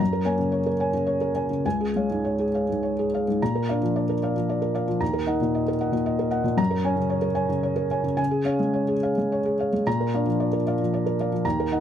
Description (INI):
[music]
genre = neoclassical minimalist piano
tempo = 99-116 BPM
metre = 3/4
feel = rubato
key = unclear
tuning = A4 = 443 Hz
[part]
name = felt-muted upright piano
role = solo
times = 0.0-11.8 s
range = Db2 to Bb5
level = -22 LUFS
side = equal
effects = none
[sound]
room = light reverb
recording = none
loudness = -22 LUFS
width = side -9 dB against mid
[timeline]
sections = 0.0-3.4 A section; 3.4-11.8 A section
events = none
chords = 0.0 Gbadd9; 1.6 Db; 3.4 Bb; 5.0 Ebm; 6.6 Gbadd9; 8.2 Db; 9.9 Bb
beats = | 0.00 0.52 1.06 | 1.65 2.24 2.82 | 3.40 3.95 4.49 | 5.01 5.53 6.07 | 6.59 7.11 7.63 | 8.19 8.75 9.31 | 9.86 10.40 10.93 | 11.45